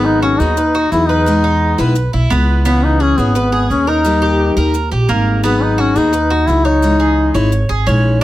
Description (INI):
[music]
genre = latin, Cuban son and guajira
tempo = 173 BPM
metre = 4/4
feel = straight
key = G# minor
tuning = A4 = 440 Hz
[part]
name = clear duduk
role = melody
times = 0.0-8.2 s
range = B3 to E4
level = -15 LUFS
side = left 1 dB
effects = none
[part]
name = picked steel-string acoustic guitar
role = accompaniment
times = 0.0-8.2 s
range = B2 to G#4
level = -18 LUFS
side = left 3 dB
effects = none
[part]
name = Cuban tres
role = arpeggios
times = 0.0-8.2 s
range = A#3 to C#5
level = -20 LUFS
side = right 3 dB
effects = none
[part]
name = upright bass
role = bass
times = 0.0-8.2 s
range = G#1 to E2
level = -16 LUFS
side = right 1 dB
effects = none
[sound]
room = little or no reverb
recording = close, detailed microphones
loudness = -11 LUFS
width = side -15 dB against mid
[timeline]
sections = 0.0-8.2 A section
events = none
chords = 0.0 G#m7; 1.3 Emaj7; 2.7 C#m7; 4.0 D#; 5.4 G#m7; 6.8 C#madd9